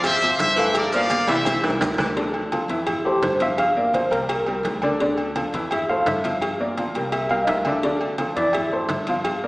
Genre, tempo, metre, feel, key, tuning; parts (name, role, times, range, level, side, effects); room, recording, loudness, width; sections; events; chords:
latin, salsa; 169 BPM; 4/4; straight; A4 = 440 Hz
brilliant trumpet section; melody; 0.0-1.6 s; Bb4 to F5; -21 LUFS; equal
edgy saxophone section; second line; 0.0-2.1 s; E3 to G3; -28 LUFS; equal
bright upright piano; accompaniment; 0.0-9.5 s; D3 to F5; -24 LUFS; equal
upright bass; bass; 0.0-9.5 s; C2 to G2; -35 LUFS; equal
agogo bells and timbales; percussion; 0.0-9.4 s; -27 LUFS; right 1 dB
congas; percussion; 0.0-9.5 s; -38 LUFS; equal
cowbell and bongos; percussion; 0.0-9.4 s; -31 LUFS; left 1 dB
maracas; percussion; 0.0-2.2 s; -39 LUFS; right 2 dB
tine electric piano; melody; 3.0-9.0 s; G4 to F5; -23 LUFS; equal; medium tremolo
wet concert hall reverb, RT60 1.9 s; recorded in a church or concert hall, small speaker sound; -19 LUFS; side -21 dB against mid
0.0-2.2 A section; 2.2-9.5 B section
drum fill 1.1-2.2; tine electric piano solo 2.2-9.5
0.0 Fmaj7; 0.7 Gm7; 1.5 C7; 2.2 Dm; 2.9 Fmaj7; 3.6 Gm7; 4.3 C5; 5.0 Dm; 5.7 Fmaj7; 6.4 Gm7; 7.1 C7; 7.8 Dm; 8.5 Fmaj7